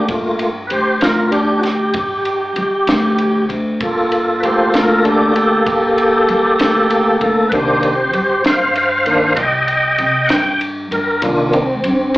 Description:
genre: slow blues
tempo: 65 BPM (dotted quarters)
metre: 12/8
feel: straight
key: G minor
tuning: A4 = 440 Hz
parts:
  - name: tonewheel organ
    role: sustained chords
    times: 0.0-12.2 s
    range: Eb3 to G5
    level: -14 LUFS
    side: equal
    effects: slow rotary speaker, overdrive, chorus vibrato
  - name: upright bass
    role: bass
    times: 0.0-12.2 s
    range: C2 to G3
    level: -21 LUFS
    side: equal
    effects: none
  - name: compact cocktail drum kit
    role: drums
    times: 0.1-12.2 s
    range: kick drum, ride cymbal, snare drum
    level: -22 LUFS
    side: equal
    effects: slapback echo
room: moderate club reverb, RT60 0.5 s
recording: live gig heard through the venue's PA, club reverb, AM radio sound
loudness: -12 LUFS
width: side -17 dB against mid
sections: 0.0-12.2 A section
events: tonewheel organ solo 0.0-12.2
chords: 0.0 Gm7; 7.5 Cm7

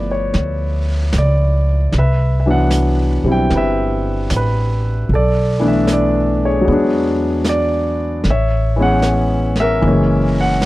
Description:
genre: jazz ballad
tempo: 76 BPM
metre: 4/4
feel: swing 67% on 8ths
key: unclear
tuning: A4 = 440 Hz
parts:
  - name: clear concert grand piano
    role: accompaniment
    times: 0.0-10.7 s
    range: E3 to G5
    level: -16 LUFS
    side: equal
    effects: none
  - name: upright bass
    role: bass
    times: 0.0-10.7 s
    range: F#1 to E2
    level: -17 LUFS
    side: equal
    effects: none
  - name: vintage brush drum kit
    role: drums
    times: 0.3-10.7 s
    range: brushed snare drum, hi-hat, snare drum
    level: -26 LUFS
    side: right 1 dB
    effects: none
room: little or no reverb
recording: dry, close 1970s-style studio recording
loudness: -13 LUFS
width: side -17 dB against mid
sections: 0.0-10.7 A section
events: none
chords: 0.0 G13; 1.9 Cmaj9#11; 5.1 Bm7; 6.7 E9; 8.3 Amaj9; 9.8 F#7

